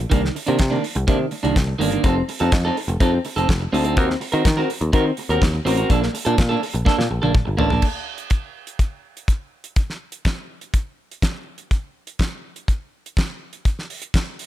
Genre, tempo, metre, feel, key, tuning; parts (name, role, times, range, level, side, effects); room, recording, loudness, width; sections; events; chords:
disco; 124 BPM; 4/4; straight; Bb major; A4 = 441 Hz
electric guitar at the edge of break-up; accompaniment; 0.0-7.8 s; Eb3 to Bb4; -21 LUFS; right 2 dB
picked electric bass; bass; 0.0-7.8 s; F1 to Eb3; -21 LUFS; equal
damped 70s drum kit; drums; 0.1-14.5 s; crash cymbal, hi-hat, kick drum, snare drum, toms; -21 LUFS; equal
little or no reverb; -19 LUFS; side -12 dB against mid
0.0-7.8 A section; 7.8-14.5 B section
drum fill 6.9-7.8
0.1 Cm9; 2.0 F7; 4.0 Ebm6; 5.9 Bbmaj7; 7.8 N.C.